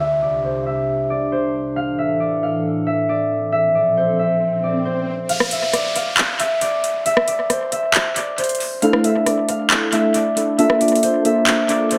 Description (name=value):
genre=hip hop, trap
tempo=136 BPM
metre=4/4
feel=half-time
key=unclear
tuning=A4 = 440 Hz
part: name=concert harp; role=melody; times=0.0-12.0 s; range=C5 to F5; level=-22 LUFS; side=equal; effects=low-pass filter, tape echo
part: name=warbly tape-like pad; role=sustained chords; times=0.0-5.3 s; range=C2 to A4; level=-26 LUFS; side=equal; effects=chorus, built-in reverb, low-pass filter
part: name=downlifter and swell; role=sound effects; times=0.0-8.8 s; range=none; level=-32 LUFS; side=equal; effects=none
part: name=trap drum kit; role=drums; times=5.3-12.0 s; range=handclaps, hi-hat, rim click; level=-22 LUFS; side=equal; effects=overdrive, tape echo
part: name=warbly lo-fi synth keys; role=accompaniment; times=8.8-12.0 s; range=A3 to A4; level=-20 LUFS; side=equal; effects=chorus, low-pass filter, tape echo
room=digital ambience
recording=echo-heavy mix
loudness=-19 LUFS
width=mono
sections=0.0-5.3 A section; 5.3-12.0 B section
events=swell 3.6-5.3; kick muted 5.3-12.0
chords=0.0 Csus2; 1.8 Asus4; 3.5 Bbmaj7; 5.3 N.C.; 8.8 Asus4; 10.6 Bbmaj7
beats=| 0.00 0.44 0.88 1.32 | 1.76 2.21 2.65 3.09 | 3.53 3.97 4.41 4.85 | 5.29 5.73 6.17 6.62 | 7.06 7.50 7.94 8.38 | 8.82 9.26 9.71 10.15 | 10.59 11.03 11.47 11.91